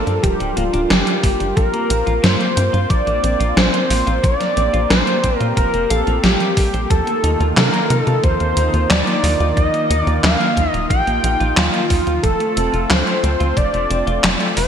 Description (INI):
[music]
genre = synthwave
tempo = 90 BPM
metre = 4/4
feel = straight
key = unclear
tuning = A4 = 440 Hz
[part]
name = wide unison lead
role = melody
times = 0.0-14.7 s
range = F4 to G5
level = -19 LUFS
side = equal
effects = digital delay
[part]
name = warm analog pad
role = sustained chords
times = 0.0-14.7 s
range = Eb3 to Bb4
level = -26 LUFS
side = right 1 dB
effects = chorus, sidechain pumping
[part]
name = clean electric guitar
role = arpeggios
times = 0.0-14.7 s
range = F3 to F5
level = -26 LUFS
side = left 3 dB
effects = digital delay
[part]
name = tight sequencer bass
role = bass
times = 0.0-14.7 s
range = D1 to C3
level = -20 LUFS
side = equal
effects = sidechain pumping
[part]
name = gated 80s digital drum machine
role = drums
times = 0.1-14.7 s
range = handclaps, hi-hat, snare drum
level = -20 LUFS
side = equal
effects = gated reverb, gated reverb snare, studio reverb
[part]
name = electronic kick drum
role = drums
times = 0.2-13.7 s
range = none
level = -18 LUFS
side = equal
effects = studio reverb
[sound]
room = moderate lush hall reverb, RT60 2.9 s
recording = bright 1980s-style digital production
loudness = -14 LUFS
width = side -8 dB against mid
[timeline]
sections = 0.0-14.7 A section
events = none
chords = 0.0 Gm7; 1.6 Bbsus2; 6.9 Ebsus2; 12.2 F